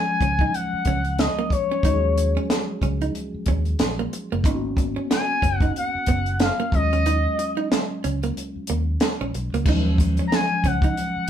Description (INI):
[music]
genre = R&B, neo-soul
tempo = 92 BPM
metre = 4/4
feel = swing 57% on 16ths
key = Eb minor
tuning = A4 = 440 Hz
[part]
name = expressive portamento lead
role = melody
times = 0.0-11.3 s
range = Db5 to Bb5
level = -24 LUFS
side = left 3 dB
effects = chorus
[part]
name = tine electric piano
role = accompaniment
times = 0.0-11.3 s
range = F3 to Ab4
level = -29 LUFS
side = left 1 dB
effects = medium stereo tremolo
[part]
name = archtop guitar, miked and amplified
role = second line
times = 0.2-10.9 s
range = Bb3 to Eb4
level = -29 LUFS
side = right 7 dB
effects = none
[part]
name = fingered electric bass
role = bass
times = 0.2-11.2 s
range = Gb1 to Eb2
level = -25 LUFS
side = equal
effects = none
[part]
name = compact cocktail drum kit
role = drums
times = 0.2-11.3 s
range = crash cymbal, hi-hat, kick drum, snare drum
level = -23 LUFS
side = equal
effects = none
[sound]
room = moderate studio reverb, RT60 0.6 s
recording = band playing live in one room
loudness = -20 LUFS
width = side -10 dB against mid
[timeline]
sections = 0.0-9.7 A section; 9.7-11.3 A section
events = break 7.0-9.7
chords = 0.0 Ebm9; 4.4 Abm9; 6.7 Ebm9